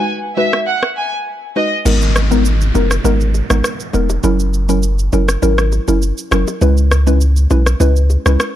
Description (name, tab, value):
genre	dancehall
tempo	101 BPM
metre	4/4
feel	straight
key	G# minor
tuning	A4 = 440 Hz
part	warm studio violin section	melody	0.0-1.7 s	D#5 to G#5	-19 LUFS	equal	low-pass filter, analog delay
part	mallet-like synth pluck	accompaniment	0.0-8.4 s	F#3 to B4	-18 LUFS	equal	chorus, phaser, low-pass filter
part	afro-pop drum kit	drums	0.5-8.5 s	crash cymbal, rim click, shaker	-20 LUFS	equal	none
part	punchy sub bass	bass	1.9-8.4 s	E1 to C#2	-13 LUFS	equal	none
part	bongos	percussion	1.9-8.2 s	none	-28 LUFS	left 4 dB	none
part	downlifter	sound effects	1.9-6.6 s	none	-26 LUFS	right 1 dB	none
room	digital ambience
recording	dry, gritty hardware recording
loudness	-12 LUFS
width	side -12 dB against mid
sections	0.0-1.9 A section; 1.9-8.6 B section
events	kick muted 1.9-8.6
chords	0.0 B6; 1.9 G#madd9; 4.2 F#7; 6.6 C#m7